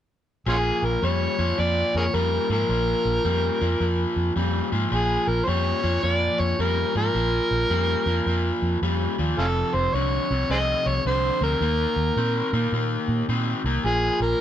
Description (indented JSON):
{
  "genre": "electric blues shuffle",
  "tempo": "108 BPM",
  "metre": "4/4",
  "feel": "swing 65% on 8ths",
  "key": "unclear",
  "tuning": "A4 = 439 Hz",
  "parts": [
    { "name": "overdriven harmonica", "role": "melody", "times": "0.5-14.4 s", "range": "Db4 to Eb5", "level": "-24 LUFS", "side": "equal", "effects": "none" },
    { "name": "overdriven electric guitar", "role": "riff", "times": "0.5-14.4 s", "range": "F2 to C4", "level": "-26 LUFS", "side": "left 2 dB", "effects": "none" },
    { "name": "vintage muted fingered electric bass", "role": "bass", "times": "0.5-14.3 s", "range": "F1 to Bb2", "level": "-25 LUFS", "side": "right 1 dB", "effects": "none" }
  ],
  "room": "light reverb",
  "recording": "none",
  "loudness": "-21 LUFS",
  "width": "side -10 dB against mid",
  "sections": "0.5-14.4 A section",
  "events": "none",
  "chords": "0.5 Bb5; 9.4 F5; 11.6 Eb5; 13.8 Bb5",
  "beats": "| 0.47 1.02 1.58 2.13 | 2.69 3.25 3.81 4.36 | 4.92 5.48 6.04 6.59 | 7.15 7.71 8.27 8.82 | 9.38 9.94 10.50 11.06 | 11.62 12.17 12.73 13.29 | 13.85 14.40"
}